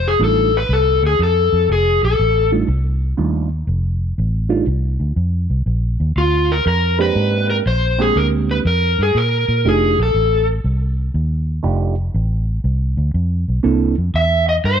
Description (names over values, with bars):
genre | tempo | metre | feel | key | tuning
electric blues shuffle | 120 BPM | 4/4 | swing 67% on 8ths | F mixolydian | A4 = 440 Hz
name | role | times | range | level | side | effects
overdriven slide guitar | melody | 0.0-2.5, 6.2-10.5, 14.2-14.8 s | F4 to E5 | -16 LUFS | left 2 dB | none
vintage muted fingered electric bass | bass | 0.0-14.8 s | F1 to Bb2 | -17 LUFS | equal | none
overdriven reed electric piano | accompaniment | 0.2-13.9 s | G3 to A4 | -19 LUFS | right 7 dB | phaser
room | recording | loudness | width
little or no reverb | none | -15 LUFS | side -8 dB against mid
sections
0.0-14.8 A section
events
none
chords
0.0 F13; 5.7 Bb13; 9.6 F13; 13.6 C13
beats
0.20 0.70 1.19 | 1.69 2.19 2.68 3.18 | 3.67 4.17 4.67 5.17 | 5.66 6.16 6.66 7.16 | 7.65 8.15 8.65 9.15 | 9.65 10.15 10.64 11.14 | 11.64 12.14 12.64 13.14 | 13.64 14.14 14.64